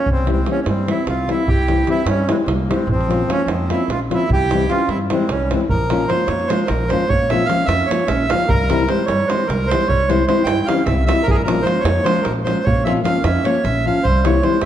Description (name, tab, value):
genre	balkan folk, Balkan wedding band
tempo	301 BPM (eighths)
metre	7/8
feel	straight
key	unclear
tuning	A4 = 440 Hz
part	accordion	melody	0.0-14.7 s	Bb3 to G5	-20 LUFS	right 2 dB	none
part	clear clarinet	second line	0.0-14.6 s	F3 to E4	-25 LUFS	right 3 dB	none
part	upright bass	bass	0.1-14.7 s	Bb1 to G2	-22 LUFS	equal	none
part	davul	percussion	0.1-14.7 s	none	-23 LUFS	right 2 dB	none
part	nylon-string guitar	accompaniment	0.3-14.6 s	E3 to F4	-21 LUFS	left 5 dB	none
room	wet recital hall reverb, RT60 1.6 s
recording	none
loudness	-15 LUFS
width	side -10 dB against mid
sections	0.0-5.7 A section; 5.7-14.7 B section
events	none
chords	0.1 C; 2.9 Bbm; 4.3 C; 5.7 Bbm; 8.5 C; 11.3 Bbm; 14.0 C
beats	| 0.06 0.26 0.46 0.66 0.87 1.07 1.27 | 1.47 1.68 1.88 2.08 2.28 2.48 2.68 | 2.89 3.09 3.29 3.49 3.69 3.89 4.09 | 4.29 4.50 4.70 4.90 5.10 5.30 5.50 | 5.70 5.90 6.10 6.30 6.50 6.70 6.90 | 7.10 7.30 7.50 7.70 7.90 8.10 8.30 | 8.49 8.69 8.89 9.09 9.29 9.49 9.69 | 9.89 10.09 10.28 10.48 10.68 10.88 11.08 | 11.28 11.47 11.67 11.87 12.07 12.27 12.46 | 12.66 12.86 13.06 13.26 13.45 13.65 13.85 | 14.05 14.24 14.44 14.64